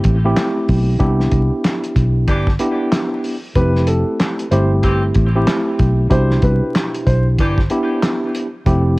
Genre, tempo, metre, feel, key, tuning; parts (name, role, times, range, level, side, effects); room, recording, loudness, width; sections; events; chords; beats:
hip hop, boom-bap hip-hop; 94 BPM; 4/4; swing 61% on 16ths; A4 = 440 Hz
tine electric piano; accompaniment; 0.0-9.0 s; B2 to G4; -19 LUFS; equal; overdrive, medium stereo tremolo, cassette tape, high-pass filter, low-pass filter
cloth-damped thuddy drum kit; drums; 0.0-8.8 s; handclaps, hi-hat, kick drum, snare drum; -19 LUFS; equal; cassette tape
fingered electric bass; bass; 0.1-9.0 s; F1 to C2; -15 LUFS; equal
warm horn section; stabs; 2.3-7.6 s; E3 to G4; -27 LUFS; equal; high-pass filter, low-pass filter, cassette tape, tape echo
dark upright piano; melody; 3.6-7.2 s; A4 to C5; -24 LUFS; equal; high-pass filter, low-pass filter, cassette tape, tape echo
small room ambience; home recording on cassette, vinyl crackle; -14 LUFS; side -23 dB against mid
0.0-9.0 A section
0.0 Fmaj9 (rootless); 1.0 Cmaj9; 3.6 Fmaj9; 6.1 Cmaj9
0.36 | 1.00 1.64 2.28 2.92 | 3.55 4.19 4.83 5.47 | 6.11 6.75 7.38 8.02 | 8.66